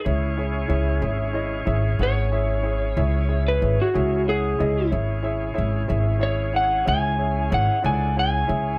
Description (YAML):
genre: slow blues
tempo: 62 BPM (dotted quarters)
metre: 12/8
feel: straight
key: unclear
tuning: A4 = 439 Hz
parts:
  - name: electric slide guitar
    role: melody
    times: 0.0-8.8 s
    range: F#4 to G#5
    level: -26 LUFS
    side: equal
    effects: none
  - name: bright tonewheel organ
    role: sustained chords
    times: 0.0-8.8 s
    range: C#4 to D5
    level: -35 LUFS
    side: equal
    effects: slow rotary speaker
  - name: warm grand piano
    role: accompaniment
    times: 0.1-8.7 s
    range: E4 to F#5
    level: -31 LUFS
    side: equal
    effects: none
  - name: upright bass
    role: bass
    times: 0.1-8.8 s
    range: G#1 to C#2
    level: -25 LUFS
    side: equal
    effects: none
room: little or no reverb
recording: none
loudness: -22 LUFS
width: mono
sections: 0.0-8.8 A section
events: none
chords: 0.1 C#m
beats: | 0.06 1.03 2.00 2.97 | 3.94 4.92 5.89 6.86 | 7.84